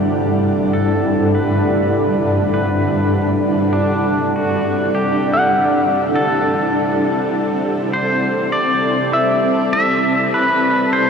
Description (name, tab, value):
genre	ambient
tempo	50 BPM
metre	4/4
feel	straight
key	unclear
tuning	A4 = 441 Hz
part	pedal steel guitar	melody	0.0-11.1 s	D4 to E5	-20 LUFS	equal	shimmer reverb, ping-pong delay
part	granular cloud pad	sustained chords	0.0-11.1 s	G2 to A5	-17 LUFS	equal	built-in reverb, shimmer reverb
part	clean electric guitar	arpeggios	0.0-11.1 s	E5 to F#5	-21 LUFS	left 1 dB	spring reverb, shimmer reverb, ping-pong delay
part	bowed-like drone	drone	0.0-11.1 s	C3 to G3	-24 LUFS	equal	built-in reverb
room	wet huge ambient reverb, RT60 8.1 s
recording	worn, warbling old tape, cassette tape, warbly pitch drift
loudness	-14 LUFS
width	side -6 dB against mid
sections	0.0-11.1 A section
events	fade-in on pedal steel guitar 0.0-11.1; fade-out on synth drone 0.0-11.1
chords	0.0 Gmaj7; 6.1 Am7